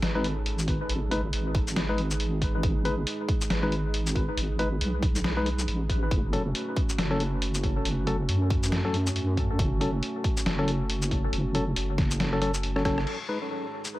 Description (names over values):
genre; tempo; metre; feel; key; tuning
deep dubstep; 138 BPM; 4/4; swing 58% on 16ths, half-time; G# phrygian; A4 = 443 Hz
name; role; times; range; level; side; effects
dark analog pad; sustained chords; 0.0-14.0 s; G#3 to G#4; -35 LUFS; right 2 dB; chorus
deep soft wobble bass; bass; 0.0-13.1 s; F#1 to F#2; -28 LUFS; equal; chorus
trip hop sampler-style drum kit; drums; 0.0-13.9 s; crash cymbal, hi-hat, rim click, shaker, snare drum; -32 LUFS; left 1 dB; none
percussive organ stab; stabs; 0.2-13.4 s; F#3 to B4; -32 LUFS; left 2 dB; chorus, dub echo
electronic kick drum; drums; 0.7-13.0 s; none; -28 LUFS; equal; none
room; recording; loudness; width
light reverb, digital ambience; none; -25 LUFS; side -16 dB against mid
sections
0.0-13.1 A section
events
drum fill 12.7-13.1; band accent 13.0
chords
0.0 G#m; 6.1 F#m; 13.1 G#m